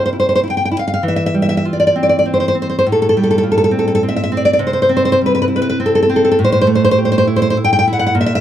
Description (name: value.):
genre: romantic piece for solo classical guitar.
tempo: 101 BPM.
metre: 3/4.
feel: rubato.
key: C major.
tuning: A4 = 440 Hz.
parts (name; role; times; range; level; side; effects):
nylon-string guitar; solo; 0.0-8.4 s; A2 to G5; -12 LUFS; equal; none.
room: light reverb.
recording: dark, warm production.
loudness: -12 LUFS.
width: side -10 dB against mid.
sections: 0.0-8.4 A section.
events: none.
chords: 0.0 C; 1.1 C/E; 2.8 Am7; 4.6 Cmaj7; 6.4 A5.